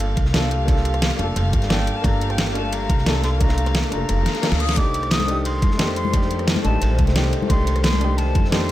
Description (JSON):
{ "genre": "liquid drum and bass", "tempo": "176 BPM", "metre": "4/4", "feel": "straight", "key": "C dorian", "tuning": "A4 = 437 Hz", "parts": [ { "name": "felt-muted upright piano", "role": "accompaniment", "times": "0.0-8.7 s", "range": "A3 to A4", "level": "-26 LUFS", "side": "left 1 dB", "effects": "tape echo" }, { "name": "warm studio string section", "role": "sustained chords", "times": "0.0-8.7 s", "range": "Eb3 to F5", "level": "-30 LUFS", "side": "left 1 dB", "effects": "sidechain pumping" }, { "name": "upright bass", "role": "bass", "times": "0.0-8.7 s", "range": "F1 to F2", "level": "-22 LUFS", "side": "equal", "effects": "none" }, { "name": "crunchy breakbeat drum kit", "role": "drums", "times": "0.0-8.6 s", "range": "ride cymbal, snare drum", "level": "-33 LUFS", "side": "right 1 dB", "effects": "high-pass filter on cymbals, high-pass filter on snare, high-pass filter on room" }, { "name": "pop drum kit", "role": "drums", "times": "0.0-8.7 s", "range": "hi-hat, rim click, snare drum", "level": "-24 LUFS", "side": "right 1 dB", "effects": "overdrive" }, { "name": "electronic kick drum", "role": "drums", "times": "0.2-8.4 s", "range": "none", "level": "-20 LUFS", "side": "equal", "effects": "overdrive" }, { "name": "silver concert flute", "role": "melody", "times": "1.7-8.7 s", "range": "G5 to Eb6", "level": "-28 LUFS", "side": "left 2 dB", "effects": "dub echo" }, { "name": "reverse cymbal", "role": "sound effects", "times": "4.2-4.8 s", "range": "none", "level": "-31 LUFS", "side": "left 6 dB", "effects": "none" }, { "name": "congas", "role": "percussion", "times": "5.2-8.4 s", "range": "none", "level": "-29 LUFS", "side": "left 7 dB", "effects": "none" } ], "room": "light reverb, small room ambience", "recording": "none", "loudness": "-17 LUFS", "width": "side -14 dB against mid", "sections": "0.0-8.7 A section", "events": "kick drops out 4.1-4.8; reverse cymbal 4.2-4.8; drum fill 4.3-4.8", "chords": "0.0 Gm7; 4.8 Cm69" }